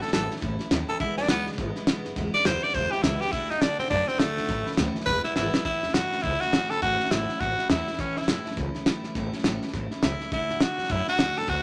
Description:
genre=rockabilly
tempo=206 BPM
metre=4/4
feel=swing 61% on 8ths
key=A major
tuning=A4 = 440 Hz
part: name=raspy tenor saxophone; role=melody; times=0.0-11.6 s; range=A3 to D5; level=-29 LUFS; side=equal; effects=none
part: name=picked steel-string acoustic guitar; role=accompaniment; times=0.0-11.6 s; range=E2 to F#4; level=-36 LUFS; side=equal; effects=none
part: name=upright bass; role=bass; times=0.0-11.6 s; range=E1 to B2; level=-37 LUFS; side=equal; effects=none
part: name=cloth-damped thuddy drum kit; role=drums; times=0.0-11.6 s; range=hi-hat, kick drum, snare drum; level=-30 LUFS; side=equal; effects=none
room=moderate large studio reverb, RT60 1.3 s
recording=none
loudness=-26 LUFS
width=mono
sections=0.0-5.7 A section; 5.7-11.6 B section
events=tenor saxophone solo 0.0-5.7; drum fill 5.4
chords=0.0 A; 1.0 E; 3.3 D; 4.5 A; 5.1 E; 5.7 A; 10.3 D

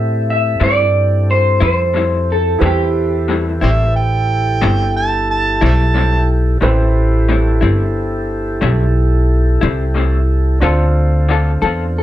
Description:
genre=blues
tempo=60 BPM (dotted quarters)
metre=12/8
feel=straight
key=A minor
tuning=A4 = 441 Hz
part: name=electric guitar through a small old amp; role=melody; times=0.0-3.4, 12.0 s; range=G4 to E5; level=-16 LUFS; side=equal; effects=wide subtle chorus
part: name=warm baby grand piano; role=accompaniment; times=0.0-12.0 s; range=D4 to B5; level=-23 LUFS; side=right 2 dB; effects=none
part: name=mellow tonewheel organ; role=sustained chords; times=0.0-12.0 s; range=C4 to A4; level=-23 LUFS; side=equal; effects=slow rotary speaker
part: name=upright bass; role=bass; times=0.0-12.0 s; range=G1 to A2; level=-15 LUFS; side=equal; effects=none
part: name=electric guitar through a small old amp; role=accompaniment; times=0.6-11.8 s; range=A2 to A4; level=-20 LUFS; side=left 6 dB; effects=tremolo
part: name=overdriven harmonica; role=second line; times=3.6-6.3 s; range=G4 to A5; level=-18 LUFS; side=right 4 dB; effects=slapback echo
room=light reverb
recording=none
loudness=-12 LUFS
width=side -13 dB against mid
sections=0.0-12.0 A section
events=none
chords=0.0 Am7; 10.6 Dm7

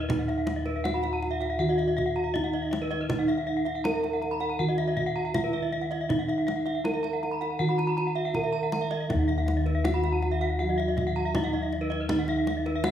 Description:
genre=Balinese gamelan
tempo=80 BPM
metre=4/4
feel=straight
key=Eb pelog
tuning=A4 = 440 Hz
part: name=gamelan-type bronze metallophone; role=melody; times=0.0-12.9 s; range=Eb4 to Bb4-30c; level=-30 LUFS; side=equal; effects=none
part: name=gamelan-type bronze metallophone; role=arpeggios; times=0.0-12.9 s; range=Cb5-20c to Bb5-30c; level=-33 LUFS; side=left 2 dB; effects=none
part: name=gamelan-type bossed gongs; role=bass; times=0.0-12.9 s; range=Eb2 to Fb4+20c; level=-30 LUFS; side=equal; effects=none
part: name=kendang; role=percussion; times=0.1-12.9 s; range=none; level=-34 LUFS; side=equal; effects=none
part: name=gamelan-type bronze metallophone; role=arpeggios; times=0.2-12.8 s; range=Cb5-20c to Cb6-20c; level=-34 LUFS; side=right 2 dB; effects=none
part: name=gamelan-type bronze metallophone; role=accompaniment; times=9.1-12.9 s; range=Eb3 to Gb3-30c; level=-37 LUFS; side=right 5 dB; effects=none
room=moderate recital hall reverb, RT60 1.6 s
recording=small room ambience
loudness=-25 LUFS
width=side -10 dB against mid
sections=0.0-12.9 A section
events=none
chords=none

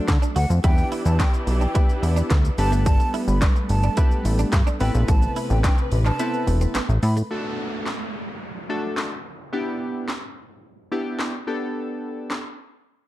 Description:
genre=dance-pop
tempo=108 BPM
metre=4/4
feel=straight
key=unclear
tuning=A4 = 440 Hz
part: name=warm analog keys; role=accompaniment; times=0.0-12.4 s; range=A3 to B4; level=-28 LUFS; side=left 1 dB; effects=chorus, sidechain pumping
part: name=warm studio string section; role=sustained chords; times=0.0-7.3 s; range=C3 to B4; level=-31 LUFS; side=equal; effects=sidechain pumping
part: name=direct-recorded clean electric guitar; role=riff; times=0.0-7.3 s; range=A3 to F#4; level=-32 LUFS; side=right 7 dB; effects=ensemble chorus
part: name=plucky analog bass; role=bass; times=0.1-7.2 s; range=E1 to D3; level=-20 LUFS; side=equal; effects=sidechain pumping
part: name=house drum kit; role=drums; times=0.1-12.4 s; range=handclaps, hi-hat, kick drum, shaker, snare drum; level=-22 LUFS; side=equal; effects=overdrive
part: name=breathy concert flute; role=melody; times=0.4-7.1 s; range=F#5 to B5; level=-31 LUFS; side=right 1 dB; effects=sidechain pumping, dub echo
part: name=downlifter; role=sound effects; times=7.3-11.8 s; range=none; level=-35 LUFS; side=right 1 dB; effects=none
room=digital ambience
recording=dark, warm production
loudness=-20 LUFS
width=side -16 dB against mid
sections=0.0-7.3 A section; 7.3-13.1 B section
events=drop 0.0-7.3; kick muted 6.2-7.3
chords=0.0 D; 0.6 Em7; 2.6 Gadd9; 4.8 Amadd9; 7.3 D; 9.5 Em7; 11.5 Gadd9

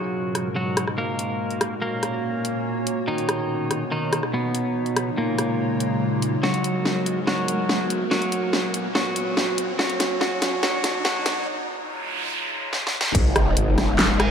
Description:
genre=heavy wobble dubstep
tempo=143 BPM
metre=4/4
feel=half-time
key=G# dorian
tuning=A4 = 436 Hz
part: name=clean electric guitar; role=melody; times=0.0-11.5 s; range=A#2 to A#4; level=-26 LUFS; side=equal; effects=vintage 12-bit sampler grit, digital delay
part: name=evolving wavetable pad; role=sustained chords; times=0.0-14.3 s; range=G#2 to C#5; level=-27 LUFS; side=equal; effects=chorus, built-in reverb, sidechain pumping
part: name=riser, noise sweep and sub drop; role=sound effects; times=4.5-14.3 s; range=none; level=-31 LUFS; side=equal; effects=none
part: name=dubstep drum kit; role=drums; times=0.4-14.3 s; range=crash cymbal, handclaps, hi-hat, rim click, snare drum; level=-24 LUFS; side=equal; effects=high-pass filter on hats, high-pass filter on snare, high-pass filter on cymbals, high-pass filter on room
part: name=growl bass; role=bass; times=13.1-14.3 s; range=G#1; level=-22 LUFS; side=equal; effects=chorus, overdrive
part: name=electronic kick drum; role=drums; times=13.1-13.2 s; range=none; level=-21 LUFS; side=equal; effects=none
part: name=distorted electric guitar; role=stabs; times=14.2-14.3 s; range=G#3 to G#4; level=-25 LUFS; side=right 4 dB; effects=overdrive
room=moderate lush hall reverb, RT60 1.6 s, digital ambience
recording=dark, warm production, high-pass filter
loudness=-21 LUFS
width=side -7 dB against mid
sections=0.0-13.1 A section; 13.1-14.3 B section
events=build-up 0.0-13.1; filter sweep 0.0-13.1; riser 4.5-11.5; drum fill 6.4-11.5, 12.7-13.1; break 11.5-13.1; noise sweep 11.5-13.1; drop 13.1-14.3; impact 13.1-14.3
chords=0.0 G#m7; 1.4 F#/A#; 3.1 Badd9; 4.8 C#add9; 6.4 G#m7; 8.1 F#/A#; 9.8 Badd9; 11.5 C#add9; 13.1 G#m

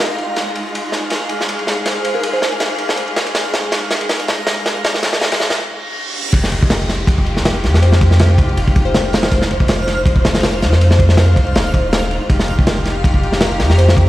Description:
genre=drum and bass, jungle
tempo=161 BPM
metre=4/4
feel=swing 54% on 16ths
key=F minor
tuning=A4 = 441 Hz
part: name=warm symphonic string section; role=sustained chords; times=0.0-14.1 s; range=Ab3 to C5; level=-22 LUFS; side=left 1 dB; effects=low-pass filter
part: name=crunchy breakbeat drum kit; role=drums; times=0.0-14.1 s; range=crash cymbal, kick drum, ride cymbal, snare drum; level=-15 LUFS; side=equal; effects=high-pass filter on kick, high-pass filter on cymbals, high-pass filter on snare, high-pass filter on room
part: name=backwards swelling texture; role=texture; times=0.0-14.1 s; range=F5 to Bb6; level=-26 LUFS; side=equal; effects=built-in reverb
part: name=glassy wavetable pluck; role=melody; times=1.9-2.5, 7.8-9.2, 13.8-14.1 s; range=Bb4 to C5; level=-24 LUFS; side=equal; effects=chorus, vintage 12-bit sampler grit, dub echo
part: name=reverse cymbal and downlifter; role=sound effects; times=5.7-9.3 s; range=none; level=-28 LUFS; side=right 2 dB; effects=none
part: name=soft dub sub bass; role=bass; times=6.3-14.1 s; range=Eb1 to F2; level=-15 LUFS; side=equal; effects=tube saturation
room=light reverb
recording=played on a big sound system in a bare room, stone room reverb, vinyl crackle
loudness=-13 LUFS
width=side -15 dB against mid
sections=0.0-6.3 A section; 6.3-14.1 B section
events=build-up 0.0-6.3; filter sweep on synth pluck 0.0-6.3; drum fill 0.4-5.6; break 5.6-6.3; reverse cymbal 5.7-6.3; drop 6.3-14.1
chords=0.0 Fm7; 6.3 Fm9

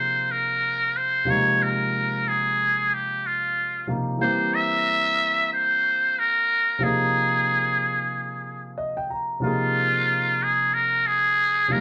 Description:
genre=hip hop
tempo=92 BPM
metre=4/4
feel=swing 60% on 16ths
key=unclear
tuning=A4 = 440 Hz
part: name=trumpet with metal mute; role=melody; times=0.0-11.8 s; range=F4 to E5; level=-23 LUFS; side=equal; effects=none
part: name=dark grand piano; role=accompaniment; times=0.0-11.8 s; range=C3 to Bb5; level=-30 LUFS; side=equal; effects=none
room=moderate studio reverb, RT60 0.7 s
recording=band playing live in one room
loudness=-23 LUFS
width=mono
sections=0.0-9.4 A section; 9.4-11.8 B section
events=grand piano fill 8.5-9.4; muted trumpet solo 9.4-11.8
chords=0.0 Bb9sus4; 1.3 Ebsus24; 4.2 C7; 6.8 Bb9sus4

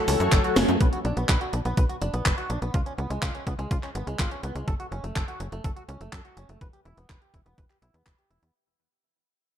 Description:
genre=italo disco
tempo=124 BPM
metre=4/4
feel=straight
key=B minor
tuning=A4 = 440 Hz
part: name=wide unison lead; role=melody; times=0.0-0.6 s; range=A4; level=-28 LUFS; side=left 4 dB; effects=lush chorus, ping-pong delay
part: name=lush unison pad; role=sustained chords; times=0.0-0.8 s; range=F#3 to C#5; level=-32 LUFS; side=equal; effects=chorus, vintage 12-bit sampler grit
part: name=direct-recorded clean electric guitar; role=arpeggios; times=0.1-8.5 s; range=G#3 to B4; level=-34 LUFS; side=right 1 dB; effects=analog chorus, low-pass filter, ping-pong delay
part: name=tight sequencer bass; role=bass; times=0.1-8.5 s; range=E1 to F#2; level=-30 LUFS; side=equal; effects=ping-pong delay
part: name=house drum kit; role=drums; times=0.1-8.5 s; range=cabasa, handclaps, hi-hat, snare drum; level=-27 LUFS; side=equal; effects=none
part: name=electronic kick drum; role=drums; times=0.3-8.2 s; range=none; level=-25 LUFS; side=equal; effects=none
room=moderate digital room reverb, RT60 1.1 s, digital ambience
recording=dark, warm production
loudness=-24 LUFS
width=side -9 dB against mid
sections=0.8-8.5 A section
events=drum fill 0.6; band accent 0.6; fade-out 0.8-8.5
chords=0.0 F#m; 0.8 Bm; 2.7 C#7; 4.7 F#m; 6.6 Em

